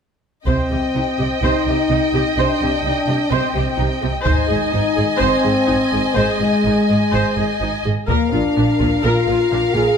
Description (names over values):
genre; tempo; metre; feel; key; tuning
cinematic, epic orchestral film score; 126 BPM; 4/4; straight; C minor; A4 = 440 Hz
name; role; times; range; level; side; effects
warm symphonic violin section; melody; 0.5-10.0 s; F5 to Ab5; -26 LUFS; left 2 dB; none
dark symphonic violin section; second line; 0.5-10.0 s; Bb4 to Eb5; -24 LUFS; left 2 dB; none
warm symphonic viola section; accompaniment; 0.5-9.8 s; D4 to C5; -24 LUFS; right 2 dB; none
mellow French horn section; sustained chords; 0.5-10.0 s; Ab3 to Ab4; -19 LUFS; left 3 dB; none
rich symphonic cello section; bass; 0.5-9.8 s; Ab2 to C3; -24 LUFS; right 2 dB; none
rich symphonic double bass section; bass; 0.5-9.8 s; Ab1 to C2; -24 LUFS; right 3 dB; none
taiko ensemble; drums; 0.5-1.4, 4.3-5.2, 8.1-9.0 s; none; -22 LUFS; equal; none
room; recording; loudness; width
moderate scoring stage reverb, RT60 1.7 s; none; -15 LUFS; side -7 dB against mid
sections
0.5-10.0 A section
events
none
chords
0.5 Cm; 4.3 Ab; 8.1 Bb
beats
| 0.47 0.95 1.42 1.90 | 2.37 2.85 3.32 3.79 | 4.26 4.73 5.21 5.68 | 6.16 6.64 7.12 7.60 | 8.08 8.56 9.04 9.51